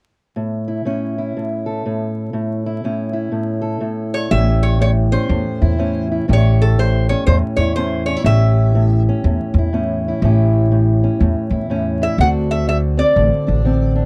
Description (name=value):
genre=acoustic country blues, solo or duo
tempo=122 BPM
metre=4/4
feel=swing 63% on 8ths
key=A mixolydian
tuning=A4 = 440 Hz
part: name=fingerpicked steel-string acoustic guitar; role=accompaniment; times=0.4-14.1 s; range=A2 to A4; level=-22 LUFS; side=equal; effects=none
part: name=lap resonator guitar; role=melody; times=4.1-9.0, 12.0-13.9 s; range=A4 to F#5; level=-22 LUFS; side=equal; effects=none
part: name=upright bass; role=bass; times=4.3-14.0 s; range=A1 to E2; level=-18 LUFS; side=equal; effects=none
room=little or no reverb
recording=dry, close 1970s-style studio recording, vinyl crackle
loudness=-17 LUFS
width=mono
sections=0.4-4.3 A section; 4.3-14.1 B section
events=none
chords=0.4 A; 4.3 A7; 12.2 D7